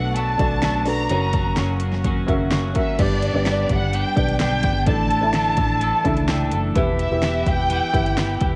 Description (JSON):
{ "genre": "piano-driven pop", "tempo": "127 BPM", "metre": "4/4", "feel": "straight", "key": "unclear", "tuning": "A4 = 440 Hz", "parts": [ { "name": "dark symphonic violin section", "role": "melody", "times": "0.0-8.4 s", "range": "D5 to A#5", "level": "-26 LUFS", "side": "equal", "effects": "cassette tape" }, { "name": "felt-muted upright piano", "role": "accompaniment", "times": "0.0-8.6 s", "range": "G2 to A5", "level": "-28 LUFS", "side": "equal", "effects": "none" }, { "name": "airy breathy pad", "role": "sustained chords", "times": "0.0-8.6 s", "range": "E3 to B4", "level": "-35 LUFS", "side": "equal", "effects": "none" }, { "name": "twelve-string electric guitar", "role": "riff", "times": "0.0-8.6 s", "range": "F#2 to A4", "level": "-31 LUFS", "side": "equal", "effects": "none" }, { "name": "vintage muted fingered electric bass", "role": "bass", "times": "0.0-8.6 s", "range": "E1 to C#2", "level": "-27 LUFS", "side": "equal", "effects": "none" }, { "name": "deep house drum kit", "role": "drums", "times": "0.2-8.5 s", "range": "crash cymbal, hi-hat, kick drum, snare drum", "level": "-26 LUFS", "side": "equal", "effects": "overdrive, cassette tape" } ], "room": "light reverb", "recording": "home recording on cassette", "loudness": "-20 LUFS", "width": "mono", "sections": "0.0-3.0 A section; 3.0-8.6 B section", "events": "felt piano fill 5.8-6.8", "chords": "0.0 Bm7; 1.1 F#; 3.0 G; 4.9 Asus4; 6.8 Em", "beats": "0.17 0.64 | 1.11 1.58 2.05 2.52 | 2.99 3.46 3.93 4.41 | 4.88 5.35 5.82 6.29 | 6.76 7.23 7.70 8.17" }